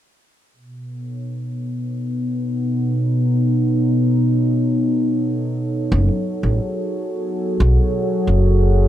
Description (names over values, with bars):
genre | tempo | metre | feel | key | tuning
ambient dub | free time | none | none | unclear | A4 = 440 Hz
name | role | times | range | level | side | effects
warm analog pad | sustained chords | 0.5-8.9 s | B2 to C#5 | -19 LUFS | equal | chorus
upright bass | bass | 5.9-8.9 s | F#1 to B1 | -15 LUFS | equal | tube saturation
room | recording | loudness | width
moderate plate reverb, RT60 2.7 s | none | -17 LUFS | side -12 dB against mid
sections
0.5-8.9 A section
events
filter sweep on analog synth pad 0.5-8.9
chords
0.5 B7; 5.9 F#madd9